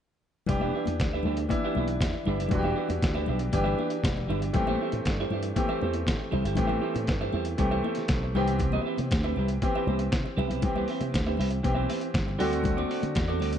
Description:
disco; 118 BPM; 4/4; straight; E minor; A4 = 444 Hz
clear grand piano; accompaniment; 0.5-13.6 s; D3 to G4; -31 LUFS; left 1 dB
electric guitar at the edge of break-up; accompaniment; 0.5-13.6 s; C4 to E5; -33 LUFS; right 6 dB
slap bass with an envelope filter; bass; 0.5-13.6 s; E1 to D3; -29 LUFS; equal
lo-fi sampler-style drum kit; drums; 0.5-13.6 s; hi-hat, kick drum, snare drum; -30 LUFS; equal
congas; percussion; 0.5-13.5 s; -35 LUFS; left 6 dB
little or no reverb; nothing above 10.4 kHz; -25 LUFS; side -9 dB against mid
0.5-13.6 A section
0.5 Em7; 4.5 Am7; 8.3 Cmaj7; 12.4 D7

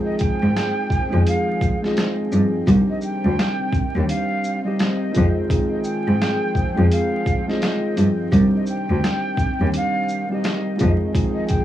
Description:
hip hop, boom-bap hip-hop; 85 BPM; 4/4; swing 61% on 16ths; A4 = 441 Hz
breathy jazz flute; melody; 0.0-11.6 s; Eb5 to G5; -27 LUFS; right 1 dB; high-pass filter, low-pass filter, cassette tape, tape echo
mellow tine electric piano; accompaniment; 0.0-11.6 s; F3 to Ab4; -24 LUFS; right 1 dB; medium stereo tremolo, cassette tape, high-pass filter, low-pass filter
warm analog pad; sustained chords; 0.0-11.6 s; C3 to G5; -28 LUFS; left 1 dB; chorus, high-pass filter, low-pass filter, cassette tape
boom bap sampler-style drum kit; drums; 0.2-11.6 s; hi-hat, kick drum, shaker, snare drum; -23 LUFS; equal; cassette tape
rich cello; bass; 0.4-10.9 s; C2 to Ab2; -18 LUFS; equal; transformer saturation
light reverb; home recording on cassette, vinyl crackle, small room ambience; -18 LUFS; side -12 dB against mid
0.0-11.6 A section
0.0 Fm7; 2.7 Cmadd9; 5.1 Fm7; 8.3 Cmadd9; 10.8 Fm7

